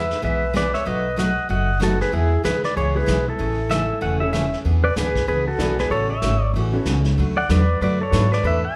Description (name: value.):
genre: country, western swing.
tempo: 190 BPM.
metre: 4/4.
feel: swing 60% on 8ths.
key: unclear.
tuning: A4 = 441 Hz.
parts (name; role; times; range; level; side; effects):
pedal steel guitar; melody; 0.0-8.8 s; E4 to G#5; -25 LUFS; equal; none.
bright upright piano; accompaniment; 0.0-8.3 s; G#3 to B4; -32 LUFS; equal; none.
picked steel-string acoustic guitar; accompaniment; 0.0-8.6 s; B2 to B4; -28 LUFS; equal; none.
upright bass; bass; 0.0-8.7 s; E1 to G#2; -24 LUFS; equal; none.
vintage brush drum kit; drums; 0.1-8.8 s; brushed snare drum, hi-hat, kick drum, snare drum; -33 LUFS; equal; none.
clean lap steel guitar; second line; 3.7-4.6 s; E5 to F#5; -27 LUFS; equal; none.
room: moderate large studio reverb, RT60 1.2 s.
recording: band playing live in one room.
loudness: -21 LUFS.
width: mono.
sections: 0.0-4.7 A section; 4.7-8.8 B section.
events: none.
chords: 0.0 E; 0.9 B7; 2.1 E; 3.4 Amaj7; 4.7 E7; 5.9 A69; 7.2 D69.